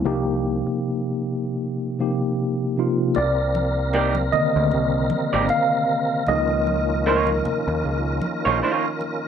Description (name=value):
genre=R&B, neo-soul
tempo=77 BPM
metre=4/4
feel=swing 56% on 16ths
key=C phrygian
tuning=A4 = 440 Hz
part: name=mellow tine electric piano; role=accompaniment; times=0.0-9.3 s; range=C3 to F5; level=-22 LUFS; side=left 1 dB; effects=medium stereo tremolo
part: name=picked electric bass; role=bass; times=0.1-8.6 s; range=Ab1 to Eb2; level=-25 LUFS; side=equal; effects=none
part: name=tonewheel organ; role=sustained chords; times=3.1-9.3 s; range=C3 to Bb4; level=-27 LUFS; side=equal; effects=slow rotary speaker, overdrive, chorus vibrato
part: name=congas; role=percussion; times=3.1-9.2 s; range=none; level=-33 LUFS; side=right 2 dB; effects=none
part: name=electric guitar through a small old amp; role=second line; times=3.9-8.8 s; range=Bb3 to D5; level=-22 LUFS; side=right 5 dB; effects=none
room=moderate studio reverb, RT60 0.8 s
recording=none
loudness=-19 LUFS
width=side -8 dB against mid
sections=0.0-3.2 A section; 3.2-9.3 B section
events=tine electric piano solo 3.2-9.3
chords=0.0 Cm7; 3.2 Cm9; 6.3 Db69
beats=| 0.04 0.82 1.60 2.38 | 3.16 3.94 4.71 5.49 | 6.27 7.05 7.83 8.61